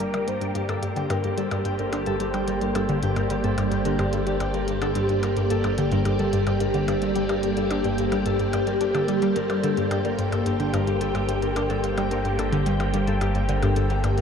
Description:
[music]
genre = ambient, sequencer-driven space music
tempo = 109 BPM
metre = 4/4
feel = straight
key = G minor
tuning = A4 = 440 Hz
[part]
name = pulse-width lead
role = melody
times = 0.0-0.6 s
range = Bb4 to C5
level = -36 LUFS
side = left 1 dB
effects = none
[part]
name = phased string machine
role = sustained chords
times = 0.0-14.2 s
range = G3 to G5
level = -26 LUFS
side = right 1 dB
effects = ensemble chorus, phaser, shimmer reverb
[part]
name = analog pluck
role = riff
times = 0.0-14.2 s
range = G2 to D4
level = -26 LUFS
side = equal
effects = chorus, phaser, ping-pong delay
[part]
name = fat analog bass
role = bass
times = 0.0-14.2 s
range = G1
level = -30 LUFS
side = equal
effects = none
[part]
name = electronic hi-hat and percussion blips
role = percussion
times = 0.0-14.2 s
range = none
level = -38 LUFS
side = left 2 dB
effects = ping-pong delay
[part]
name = wind-like tuned noise texture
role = texture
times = 0.0-14.2 s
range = C5 to D5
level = -36 LUFS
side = equal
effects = built-in reverb, shimmer reverb
[part]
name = Celtic harp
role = arpeggios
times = 0.6-14.2 s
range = G4 to G5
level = -29 LUFS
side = left 4 dB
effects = auto-pan, shimmer reverb, ping-pong delay
[sound]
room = wet cathedral reverb, RT60 5.0 s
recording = in a vast, echoing space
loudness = -21 LUFS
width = side -7 dB against mid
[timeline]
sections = 0.0-14.2 A section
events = none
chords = 0.0 Gm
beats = 0.00 | 0.55 1.10 1.65 2.20 | 2.75 3.30 3.85 4.41 | 4.96 5.51 6.06 6.61 | 7.16 7.71 8.26 8.81 | 9.36 9.91 10.46 11.01 | 11.56 12.11 12.66 13.21 | 13.76

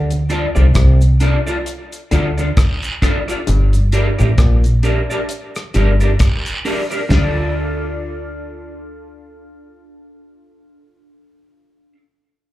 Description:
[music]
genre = roots reggae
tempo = 66 BPM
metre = 4/4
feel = swing 58% on 16ths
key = D minor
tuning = A4 = 440 Hz
[part]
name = auto-wah clav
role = riff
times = 0.0-6.0 s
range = G2 to D3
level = -23 LUFS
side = left 4 dB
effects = overdrive, slapback echo
[part]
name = deep dub fingered electric bass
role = bass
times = 0.0-11.9 s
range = G1 to D2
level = -14 LUFS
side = equal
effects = none
[part]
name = damped 70s drum kit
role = drums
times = 0.1-7.4 s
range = hi-hat, kick drum, rim click, snare drum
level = -17 LUFS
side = equal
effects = none
[part]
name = cabasa and guiro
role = percussion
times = 0.1-7.5 s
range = none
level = -30 LUFS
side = right 2 dB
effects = none
[part]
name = electric guitar at the edge of break-up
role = accompaniment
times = 0.3-12.0 s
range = D4 to D5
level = -22 LUFS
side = equal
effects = analog chorus, tape echo, slapback echo
[sound]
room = little or no reverb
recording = live gig heard through the venue's PA, club reverb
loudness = -13 LUFS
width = side -15 dB against mid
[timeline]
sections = 0.0-7.1 A section; 7.1-10.7 B section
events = none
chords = 0.0 Dm; 3.5 Gm; 7.1 Dm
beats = 0.75 1.66 2.56 | 3.47 4.38 5.29 6.20 | 7.11 8.01 8.92 9.83

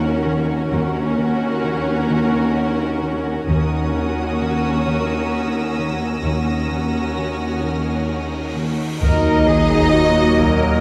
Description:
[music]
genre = cinematic, suspense film score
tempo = 65 BPM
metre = 3/4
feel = straight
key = Eb minor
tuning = A4 = 440 Hz
[part]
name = warm studio violin section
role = melody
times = 0.0-10.8 s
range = Bb4 to Eb5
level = -28 LUFS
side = equal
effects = none
[part]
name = rich studio violin section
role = second line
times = 0.0-10.8 s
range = Eb4 to Gb4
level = -29 LUFS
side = equal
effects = none
[part]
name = warm studio viola section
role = accompaniment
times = 0.0-10.8 s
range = Gb3 to Db4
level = -27 LUFS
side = equal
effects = none
[part]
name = concert harp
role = riff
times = 0.0-10.8 s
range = Eb3 to Eb4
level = -28 LUFS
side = equal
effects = none
[part]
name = rich studio cello section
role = bass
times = 0.0-10.8 s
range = Eb2 to Bb4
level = -25 LUFS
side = equal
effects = none
[part]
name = rich studio double bass section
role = bass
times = 0.7-10.8 s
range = Eb2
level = -26 LUFS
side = equal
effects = none
[part]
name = clear studio violin section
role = texture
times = 3.5-10.8 s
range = Bb5 to Bb6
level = -35 LUFS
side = equal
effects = none
[part]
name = cymbal swell and sub drop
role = sound effects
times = 8.0-10.8 s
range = none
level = -30 LUFS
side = equal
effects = none
[part]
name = bright trombone section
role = sustained chords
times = 9.0-10.8 s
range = Bb2 to Gb3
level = -28 LUFS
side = equal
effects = none
[part]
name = warm French horn section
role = sustained chords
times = 9.0-10.8 s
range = Eb4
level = -24 LUFS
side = equal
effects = none
[part]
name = taiko ensemble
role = drums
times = 9.0-10.8 s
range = none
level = -26 LUFS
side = equal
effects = none
[sound]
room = moderate concert hall reverb, RT60 2.4 s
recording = none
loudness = -19 LUFS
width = mono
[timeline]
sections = 0.0-9.0 A section; 9.0-10.8 B section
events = cymbal swell 8.0-9.0; impact 9.0-10.8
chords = 0.0 Ebm7; 9.0 Ebm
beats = | 0.71 1.64 2.56 | 3.48 4.40 5.33 | 6.25 7.17 8.10 | 9.02 9.94

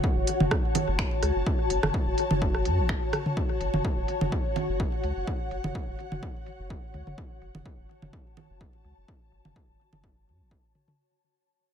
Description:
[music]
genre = minimal techno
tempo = 126 BPM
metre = 4/4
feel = swing 54% on 16ths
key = F# minor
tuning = A4 = 440 Hz
[part]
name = electronic kick drum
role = drums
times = 0.0-10.6 s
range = none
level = -29 LUFS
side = equal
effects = none
[part]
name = ethereal airy pad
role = texture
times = 0.0-11.0 s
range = F#4 to A5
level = -31 LUFS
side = left 2 dB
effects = ensemble chorus, built-in reverb, sidechain pumping
[part]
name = saturated sub bass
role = bass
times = 0.2-10.6 s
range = F#1 to F#2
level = -30 LUFS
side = equal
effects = sidechain pumping
[part]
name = minimal click drum kit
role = drums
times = 0.3-10.9 s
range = finger snaps, hi-hat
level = -33 LUFS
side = right 1 dB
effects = low-pass filter on hats, low-pass filter on snare, low-pass filter on room
[part]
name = garage drum kit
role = percussion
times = 0.4-11.0 s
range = congas, rim click, toms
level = -29 LUFS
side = right 2 dB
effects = ping-pong delay
[sound]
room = moderate studio reverb, RT60 0.5 s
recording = none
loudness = -25 LUFS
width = side -8 dB against mid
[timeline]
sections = 0.0-11.0 A section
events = fade-out 0.0-11.0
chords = 0.0 F#5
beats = 0.04 0.51 0.99 | 1.46 1.94 2.42 2.89 | 3.37 3.85 4.32 4.80 | 5.27 5.75 6.23 6.70 | 7.18 7.66 8.13 8.61 | 9.08 9.56 10.04 10.51

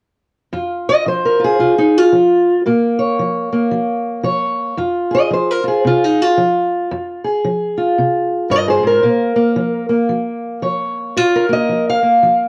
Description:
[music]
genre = acoustic country blues, solo or duo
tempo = 113 BPM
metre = 4/4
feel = swing 61% on 8ths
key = F minor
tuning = A4 = 442 Hz
[part]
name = fingerpicked steel-string acoustic guitar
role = solo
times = 0.5-12.5 s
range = F2 to F5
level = -16 LUFS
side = equal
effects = cassette tape
[sound]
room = light reverb, studio reverb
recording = home recording on cassette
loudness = -16 LUFS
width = mono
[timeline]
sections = 0.5-12.5 A section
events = none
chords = 0.5 Fm; 2.7 Bbm; 4.8 Fm; 9.0 Bbm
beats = | 0.53 1.06 1.60 2.13 | 2.66 3.19 3.72 4.25 | 4.78 5.31 5.84 6.38 | 6.91 7.44 7.97 8.51 | 9.04 9.57 10.11 10.64 | 11.17 11.71 12.24

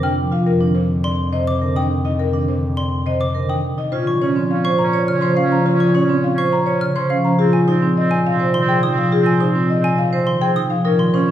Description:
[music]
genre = classical, minimalist pattern music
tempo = 104 BPM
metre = 3/4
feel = straight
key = Bb minor from 3.9 s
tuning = A4 = 440 Hz
[part]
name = buzzing marimba with medium hard mallets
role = melody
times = 0.0-11.3 s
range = Ab4 to C6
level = -24 LUFS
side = left 5 dB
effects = none
[part]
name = concert harp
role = accompaniment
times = 0.0-11.3 s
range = Bb2 to Bb3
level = -19 LUFS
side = equal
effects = none
[part]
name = vibraphone with medium hard mallets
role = arpeggios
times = 0.0-11.3 s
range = C4 to Db5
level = -22 LUFS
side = right 4 dB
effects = none
[part]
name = xylophone with rubber mallets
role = arpeggios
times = 0.0-11.2 s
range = F5 to F6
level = -26 LUFS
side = left 2 dB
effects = none
[part]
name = mellow bass clarinet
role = bass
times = 0.0-11.3 s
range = F2 to Bb2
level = -23 LUFS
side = left 1 dB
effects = none
[part]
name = clear oboe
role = second line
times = 3.9-11.3 s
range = C4 to Db4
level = -25 LUFS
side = right 4 dB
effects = none
[sound]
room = wet recital hall reverb, RT60 1.6 s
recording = heard from further back in the room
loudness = -15 LUFS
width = side -11 dB against mid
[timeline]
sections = 0.0-3.9 A section; 3.9-11.3 B section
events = none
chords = 0.5 Ebmaj7(no3)/F; 3.9 Bbm; 7.4 Ab/Bb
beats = | 0.47 1.04 1.62 | 2.20 2.77 3.35 | 3.93 4.50 5.08 | 5.66 6.23 6.81 | 7.39 7.96 8.54 | 9.12 9.70 10.27 | 10.85

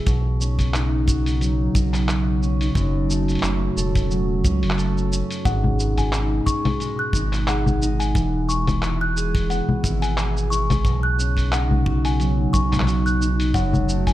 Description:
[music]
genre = folktronica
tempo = 89 BPM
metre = 4/4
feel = swing 56% on 16ths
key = unclear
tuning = A4 = 440 Hz
[part]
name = warbly tape-like pad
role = sustained chords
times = 0.0-14.1 s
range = B2 to F#4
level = -29 LUFS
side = right 1 dB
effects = chorus, built-in reverb
[part]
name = concert harp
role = arpeggios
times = 0.0-14.1 s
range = F#2 to A4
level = -24 LUFS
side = equal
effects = none
[part]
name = round analog bass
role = bass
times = 0.1-14.1 s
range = E1 to C#2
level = -23 LUFS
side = equal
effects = none
[part]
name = kick drum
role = drums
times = 0.1-14.1 s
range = none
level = -23 LUFS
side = equal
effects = none
[part]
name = lo-fi sampler-style drum kit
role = drums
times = 0.1-14.1 s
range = congas, handclaps, hi-hat, shaker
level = -26 LUFS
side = left 1 dB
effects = none
[part]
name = music box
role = second line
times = 5.5-14.1 s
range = F#5 to F#6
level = -27 LUFS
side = left 2 dB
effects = tape echo
[sound]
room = light reverb, small room ambience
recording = dark, warm production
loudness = -18 LUFS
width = side -14 dB against mid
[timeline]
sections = 0.0-14.1 A section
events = none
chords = 0.1 Badd9; 2.8 F#m; 5.5 G#m; 8.2 E; 10.8 Badd9; 13.5 F#m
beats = | 0.06 0.74 1.41 2.08 | 2.76 3.43 4.11 4.78 | 5.46 6.13 6.80 7.48 | 8.15 8.83 9.50 10.17 | 10.85 11.52 12.20 12.87 | 13.54

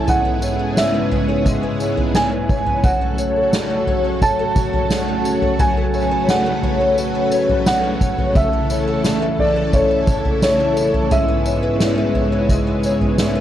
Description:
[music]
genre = dream pop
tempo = 87 BPM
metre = 4/4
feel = straight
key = F# minor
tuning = A4 = 441 Hz
[part]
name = felt-muted upright piano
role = melody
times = 0.0-13.4 s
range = C#5 to A5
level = -22 LUFS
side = right 1 dB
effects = ping-pong delay
[part]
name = string machine, full ensemble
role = sustained chords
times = 0.0-13.4 s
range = G#2 to B4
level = -21 LUFS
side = right 1 dB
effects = ensemble chorus
[part]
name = picked twelve-string acoustic guitar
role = arpeggios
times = 0.0-13.4 s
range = F#3 to C#5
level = -22 LUFS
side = left 3 dB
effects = ensemble chorus, ping-pong delay
[part]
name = soft-mallet drum kit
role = drums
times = 0.1-13.3 s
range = kick drum, snare drum, tambourine, toms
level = -20 LUFS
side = equal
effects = none
[sound]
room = light reverb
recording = worn, warbling old tape, cassette tape, warbly pitch drift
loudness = -15 LUFS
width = side -11 dB against mid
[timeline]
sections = 0.0-13.4 A section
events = none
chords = 0.1 C#m7/G#; 2.8 F#m; 8.4 A; 11.1 C#m7/G#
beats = | 0.08 0.77 1.46 2.15 | 2.84 3.53 4.22 4.91 | 5.60 6.29 6.97 7.67 | 8.36 9.04 9.73 10.42 | 11.11 11.80 12.49 13.18

